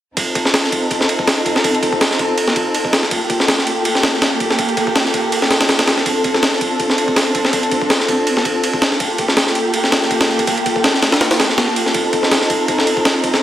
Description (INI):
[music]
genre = drum and bass, jungle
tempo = 163 BPM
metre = 4/4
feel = swing 54% on 16ths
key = G minor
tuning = A4 = 440 Hz
[part]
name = dark studio string section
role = sustained chords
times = 0.2-13.4 s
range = Bb3 to A4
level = -18 LUFS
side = equal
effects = none
[part]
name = breakbeat sampler-style drum kit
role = drums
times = 0.2-13.4 s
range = kick drum, ride cymbal, snare drum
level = -15 LUFS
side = equal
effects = high-pass filter on kick, high-pass filter on cymbals, high-pass filter on snare
[sound]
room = wet lush hall reverb, RT60 2.0 s, digital ambience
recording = heavily compressed radio sound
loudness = -13 LUFS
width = side -12 dB against mid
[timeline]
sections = 0.2-13.4 A section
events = none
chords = 0.2 F7; 3.1 Gm9; 6.1 Dm7; 9.0 Gm9; 11.9 F7